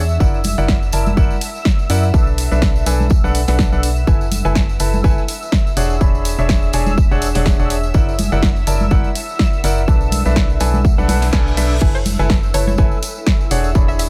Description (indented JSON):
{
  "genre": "piano house",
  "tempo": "124 BPM",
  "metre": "4/4",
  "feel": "swing 56% on 16ths",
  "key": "F# minor",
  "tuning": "A4 = 440 Hz",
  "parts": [
    { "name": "analog string pad", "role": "sustained chords", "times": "0.0-14.1 s", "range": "E5 to E6", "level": "-32 LUFS", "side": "equal", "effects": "ensemble chorus, phaser, sidechain pumping" },
    { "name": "organ-like FM bass", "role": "bass", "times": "0.0-14.1 s", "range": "E1 to F#2", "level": "-20 LUFS", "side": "equal", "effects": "tube saturation, sidechain pumping" },
    { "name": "granular cloud pad", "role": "texture", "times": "0.2-14.1 s", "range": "D4 to G#5", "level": "-38 LUFS", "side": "equal", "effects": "none" },
    { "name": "tambourine and congas", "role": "percussion", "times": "0.1-14.1 s", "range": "none", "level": "-29 LUFS", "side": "equal", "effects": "none" },
    { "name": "clear concert grand piano", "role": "riff", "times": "0.2-14.1 s", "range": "D4 to B5", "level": "-25 LUFS", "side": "equal", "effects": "sidechain pumping, dub echo" },
    { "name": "electronic kick drum", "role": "drums", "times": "0.2-13.9 s", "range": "none", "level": "-18 LUFS", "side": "equal", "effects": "none" },
    { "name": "punchy analog drum machine", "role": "drums", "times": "0.4-14.1 s", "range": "crash cymbal, hi-hat, snare drum", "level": "-26 LUFS", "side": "equal", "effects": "none" },
    { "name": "reverse cymbal", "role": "sound effects", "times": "11.1-11.8 s", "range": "none", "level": "-33 LUFS", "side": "equal", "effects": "none" },
    { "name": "hollow square pluck", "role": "melody", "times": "11.9-14.1 s", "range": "C#5 to E5", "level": "-29 LUFS", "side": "equal", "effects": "subtle chorus, dub echo" }
  ],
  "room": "little or no reverb",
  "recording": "none",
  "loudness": "-16 LUFS",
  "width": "mono",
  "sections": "0.0-14.1 A section",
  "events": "reverse cymbal 11.1-11.8",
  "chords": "0.2 F#7b13; 2.1 Bm7; 4.1 F#m11; 5.8 E13; 7.9 F#7b13; 9.9 Bm7; 11.8 F#m11; 13.5 E13",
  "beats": "| 0.20 0.69 1.17 1.66 | 2.14 2.62 3.11 3.59 | 4.08 4.56 5.04 5.53 | 6.01 6.49 6.98 7.46 | 7.95 8.43 8.91 9.40 | 9.88 10.37 10.85 11.33 | 11.82 12.30 12.79 13.27 | 13.75"
}